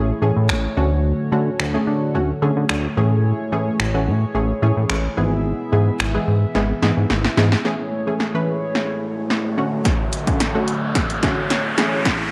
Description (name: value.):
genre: dance-pop.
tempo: 109 BPM.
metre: 4/4.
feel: straight.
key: A major.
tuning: A4 = 439 Hz.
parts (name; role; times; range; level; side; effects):
punchy chord stab; accompaniment; 0.0-12.3 s; D3 to B4; -26 LUFS; equal; chorus, sidechain pumping.
chorused pulse-width pad; sustained chords; 0.0-12.3 s; D3 to G#5; -28 LUFS; equal; sidechain pumping.
chorused synth bass; bass; 0.0-7.6 s; G#1 to D3; -22 LUFS; equal; sidechain pumping.
punchy analog drum machine; drums; 0.5-12.2 s; finger snaps, hi-hat, kick drum, snare drum; -24 LUFS; equal; none.
riser; sound effects; 8.7-12.3 s; none; -29 LUFS; equal; none.
room: light reverb.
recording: high-pass filter.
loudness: -20 LUFS.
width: mono.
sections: 0.0-7.7 A section; 7.7-12.3 B section.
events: drum fill 6.5-7.7, 7.7-12.3; build-up 7.7-12.3; filter sweep 7.7-12.3; riser 8.7-12.3.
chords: 0.0 Amaj7; 0.8 Dmaj7; 3.0 Amaj7; 5.2 E/G#; 7.7 Amaj7; 9.6 Dmaj7; 11.8 Amaj7.